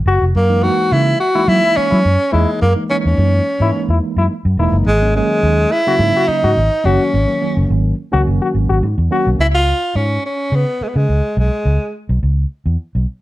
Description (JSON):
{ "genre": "funk", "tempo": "106 BPM", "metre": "4/4", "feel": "straight", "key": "unclear", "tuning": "A4 = 444 Hz", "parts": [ { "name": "vintage muted fingered electric bass", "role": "bass", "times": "0.0-13.0 s", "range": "Fb1 to Gb3", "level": "-15 LUFS", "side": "equal", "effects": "none" }, { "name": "clear trombone", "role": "second line", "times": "0.1-9.3 s", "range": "Fb4 to Gb4", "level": "-20 LUFS", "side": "left 4 dB", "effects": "plate reverb" }, { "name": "breathy tenor saxophone", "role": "melody", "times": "0.4-11.9 s", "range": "Ab3 to Gb4", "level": "-16 LUFS", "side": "equal", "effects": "slapback echo, plate reverb" }, { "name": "mellow tine electric piano", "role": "stabs", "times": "0.5-9.4 s", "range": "Db3 to Eb4", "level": "-21 LUFS", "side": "right 2 dB", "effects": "medium stereo tremolo, plate reverb" } ], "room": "moderate studio reverb, RT60 0.5 s", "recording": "dark, warm production", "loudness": "-13 LUFS", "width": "side -16 dB against mid", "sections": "0.0-9.4 A section; 9.4-13.2 B section", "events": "none", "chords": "0.3 Gb13; 4.9 Ab9sus4; 9.4 Db7(no3)" }